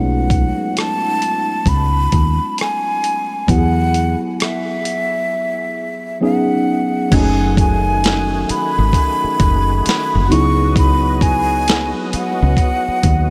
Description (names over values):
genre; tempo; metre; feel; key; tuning
R&B, neo-soul; 66 BPM; 4/4; swing 63% on 16ths; F# dorian; A4 = 440 Hz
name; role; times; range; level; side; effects
breathy jazz flute; melody; 0.0-13.3 s; E5 to C#6; -22 LUFS; equal; none
tine electric piano; accompaniment; 0.0-13.3 s; F#3 to G#4; -23 LUFS; equal; phaser
woody fretless electric bass; bass; 0.0-13.3 s; F#1 to E2; -19 LUFS; equal; none
dusty soul sampler-style drum kit; drums; 0.3-13.3 s; crash cymbal, hi-hat, kick drum, rim click, snare drum; -21 LUFS; equal; none
percussive tonewheel organ; sustained chords; 7.1-13.3 s; D#3 to D#5; -27 LUFS; equal; overdrive, chorus vibrato, slow rotary speaker
room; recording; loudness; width
moderate huge ambient reverb, RT60 5.9 s; dreamy mix soaked in reverb; -16 LUFS; mono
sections
0.0-7.1 A section; 7.1-13.3 B section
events
none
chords
0.0 B13; 3.5 E; 6.2 C#7sus4; 7.1 F#m69; 10.3 C#m11